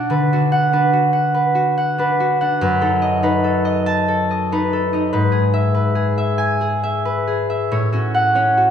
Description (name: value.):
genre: classical, solo harp piece.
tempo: 47 BPM (dotted quarters).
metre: 6/8.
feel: uneven beats, rubato.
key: E major.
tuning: A4 = 440 Hz.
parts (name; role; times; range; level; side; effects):
concert harp; solo; 0.0-8.7 s; F#2 to A5; -15 LUFS; equal; none.
room: wet concert hall reverb, RT60 2.1 s.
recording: recorded in a church or concert hall.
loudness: -15 LUFS.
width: side -8 dB against mid.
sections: 0.0-8.7 A section.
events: none.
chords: 0.1 Bm/D; 2.6 B7/F#; 5.1 E/G#; 7.7 F#m/A.